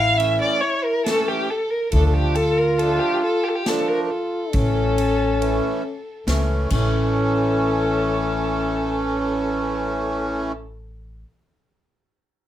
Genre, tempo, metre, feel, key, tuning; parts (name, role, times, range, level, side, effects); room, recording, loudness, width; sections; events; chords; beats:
klezmer; 69 BPM; 3/4; straight; A phrygian dominant; A4 = 440 Hz
dark violin; melody; 0.0-10.5 s; G4 to F5; -23 LUFS; left 1 dB; slapback echo
mellow trombone; second line; 0.0-10.5 s; A3 to F4; -25 LUFS; left 2 dB
upright bass; bass; 0.0-11.2 s; A1 to D2; -24 LUFS; equal
accordion; accompaniment; 0.2-10.5 s; E3 to D4; -24 LUFS; right 2 dB
street-band drum kit; drums; 0.2-6.9 s; crash cymbal, kick drum, ride cymbal, snare drum; -27 LUFS; equal
moderate small room ambience, RT60 0.5 s; -19 LUFS; side -12 dB against mid
0.0-7.1 A section; 7.1-9.8 B section
drum fill 6.7-7.1
0.0 A; 1.9 Dm; 4.5 A
0.17 1.04 | 1.91 2.79 3.65 | 4.53 5.40 6.27 | 7.14 8.01 8.89